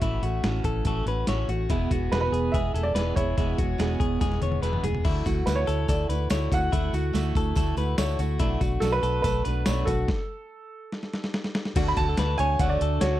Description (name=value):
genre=jangly indie pop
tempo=143 BPM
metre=4/4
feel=straight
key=unclear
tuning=A4 = 439 Hz
part: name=warm upright piano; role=melody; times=0.0-13.2 s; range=A4 to B5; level=-29 LUFS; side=right 2 dB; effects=slapback echo
part: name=picked steel-string acoustic guitar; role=accompaniment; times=0.0-13.2 s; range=E2 to G#4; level=-32 LUFS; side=right 6 dB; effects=none
part: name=direct-recorded clean electric guitar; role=arpeggios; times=0.0-13.2 s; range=E4 to C#5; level=-31 LUFS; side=left 7 dB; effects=slapback echo
part: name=vintage muted fingered electric bass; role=bass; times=0.0-13.2 s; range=E1 to D2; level=-27 LUFS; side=equal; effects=none
part: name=dusty soul sampler-style drum kit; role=drums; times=0.0-13.1 s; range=crash cymbal, hi-hat, kick drum, snare drum, toms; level=-28 LUFS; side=equal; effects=overdrive
part: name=tambourine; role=percussion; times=5.1-10.0 s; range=none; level=-46 LUFS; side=right 6 dB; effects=none
room=digital ambience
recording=dry, close 1970s-style studio recording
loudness=-23 LUFS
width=side -14 dB against mid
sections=0.0-11.8 A section; 11.8-13.2 B section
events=drum fill 4.2-5.0, 10.9-11.8; stop 10.1-11.8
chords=0.0 A6; 1.7 E; 5.0 Dadd9; 8.4 Bm7; 11.8 D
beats=| 0.02 0.44 0.86 1.28 | 1.70 2.12 2.53 2.95 | 3.37 3.79 4.21 4.63 | 5.05 5.47 5.89 6.31 | 6.73 7.14 7.57 7.98 | 8.40 8.82 9.24 9.66 | 10.08 10.50 10.92 11.34 | 11.76 12.18 12.60 13.02